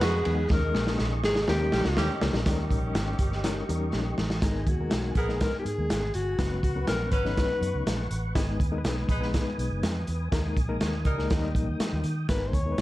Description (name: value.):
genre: uptempo 1960s-style soul.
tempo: 122 BPM.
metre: 4/4.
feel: straight.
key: G# minor.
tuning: A4 = 439 Hz.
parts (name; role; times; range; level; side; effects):
clear alto saxophone; melody; 0.0-8.1, 12.3-12.8 s; D#4 to C#5; -30 LUFS; left 1 dB; slapback echo.
warm horn section; second line; 0.0-11.4 s; D#3 to B4; -35 LUFS; right 1 dB; none.
tonewheel organ; sustained chords; 0.0-12.8 s; G4 to D#6; -39 LUFS; equal; slow rotary speaker, overdrive, chorus vibrato.
vintage muted fingered electric bass; bass; 0.0-12.8 s; F#1 to D#3; -30 LUFS; equal; none.
crunchy breakbeat drum kit; drums; 0.0-12.8 s; hi-hat, kick drum, ride cymbal, snare drum; -28 LUFS; equal; none.
overdriven reed electric piano; accompaniment; 0.3-12.8 s; F#3 to B4; -33 LUFS; left 4 dB; fast tremolo.
room: light reverb.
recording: dark, warm production.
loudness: -24 LUFS.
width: side -16 dB against mid.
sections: 0.0-2.5 A section; 2.5-4.4 B section; 4.4-12.8 C section.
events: drum fill 0.5-2.5, 3.9-4.4.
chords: 0.5 D#7sus4; 1.5 D#7; 4.4 G#madd9; 6.4 F#sus4; 8.4 G#m; 10.3 D#sus4; 11.3 D#; 12.3 G#madd9.